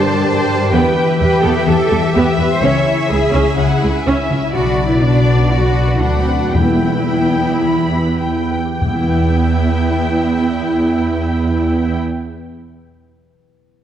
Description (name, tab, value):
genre	cinematic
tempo	99-127 BPM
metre	4/4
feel	straight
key	E minor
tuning	A4 = 440 Hz
part	warm studio violin section	melody	0.0-12.0 s	D5 to B5	-23 LUFS	equal	none
part	rich chamber violin section	second line	0.0-12.0 s	D5 to B5	-28 LUFS	left 4 dB	none
part	warm symphonic viola section	accompaniment	0.0-12.0 s	G3 to G4	-21 LUFS	right 2 dB	none
part	concert harp	arpeggios	0.0-12.7 s	G2 to E6	-20 LUFS	left 7 dB	none
part	clear symphonic double bass section	bass	0.0-12.0 s	B1 to G2	-18 LUFS	right 2 dB	none
part	rich symphonic cello section	bass	0.0-12.0 s	C4 to C#5	-19 LUFS	right 1 dB	none
part	timpani	percussion	6.5-12.0 s	E2	-21 LUFS	left 1 dB	none
room	moderate scoring stage reverb, RT60 1.9 s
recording	dark, warm production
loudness	-13 LUFS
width	side -10 dB against mid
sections	0.0-8.8 A section; 8.8-13.6 B section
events	slowing down 3.6-8.8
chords	0.0 Gm; 0.7 Em; 2.6 C#m; 4.5 Bm; 6.5 Em